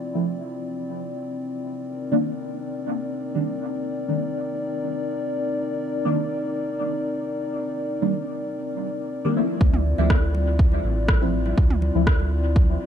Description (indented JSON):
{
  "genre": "dub techno",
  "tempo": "122 BPM",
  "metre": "4/4",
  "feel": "straight",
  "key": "D phrygian",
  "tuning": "A4 = 438 Hz",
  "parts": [
    { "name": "dark analog pad", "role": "sustained chords", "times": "0.0-12.9 s", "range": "C4 to D5", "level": "-28 LUFS", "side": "left 2 dB", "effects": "chorus, sidechain pumping" },
    { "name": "deep mellow chord stab", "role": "stabs", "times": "0.1-12.1 s", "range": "Eb3 to E4", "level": "-27 LUFS", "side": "equal", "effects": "chorus, phaser, sidechain pumping, dub echo" },
    { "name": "round analog bass", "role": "bass", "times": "9.6-12.8 s", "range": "A1 to D2", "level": "-23 LUFS", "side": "equal", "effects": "tube saturation, sidechain pumping" },
    { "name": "electronic kick drum", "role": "drums", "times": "9.6-12.7 s", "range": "none", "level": "-19 LUFS", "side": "equal", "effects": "overdrive" },
    { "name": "electronic congas and toms", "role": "percussion", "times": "9.6-12.7 s", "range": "none", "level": "-33 LUFS", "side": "right 3 dB", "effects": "overdrive, sidechain pumping on perc, sidechain pumping on toms, dub echo" },
    { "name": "electronic rim click", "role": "drums", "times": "10.1-12.2 s", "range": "none", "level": "-30 LUFS", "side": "left 1 dB", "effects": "overdrive, dub echo" }
  ],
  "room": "light reverb",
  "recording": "none",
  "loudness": "-22 LUFS",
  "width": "side -9 dB against mid",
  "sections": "0.0-9.6 A section; 9.6-12.9 B section",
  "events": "none",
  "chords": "0.0 Dm9; 1.7 Cm9; 9.6 Dm9"
}